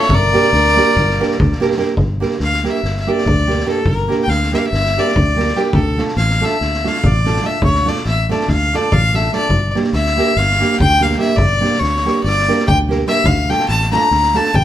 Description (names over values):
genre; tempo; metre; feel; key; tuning
balkan folk, Balkan wedding band; 287 BPM (eighths); 9/8; straight; G dorian sharp4; A4 = 440 Hz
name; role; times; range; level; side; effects
clear fiddle; melody; 0.0-14.6 s; G4 to Bb5; -17 LUFS; left 2 dB; none
warm violin; second line; 0.0-1.6 s; A4 to Bb4; -21 LUFS; right 1 dB; none
nylon-string guitar; accompaniment; 0.0-14.5 s; A3 to Bb4; -19 LUFS; right 4 dB; none
street-band drum kit; percussion; 0.0-14.6 s; kick drum, snare drum; -21 LUFS; equal; none
fingered electric bass; bass; 0.1-14.6 s; G1 to D2; -18 LUFS; equal; none
room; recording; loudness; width
moderate large studio reverb, RT60 0.9 s; band playing live in one room; -13 LUFS; side -12 dB against mid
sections
0.0-2.0 A section; 2.0-14.6 B section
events
fiddle solo 2.0-14.6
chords
0.1 Gm; 5.7 Dm; 9.5 Gm; 13.3 Dm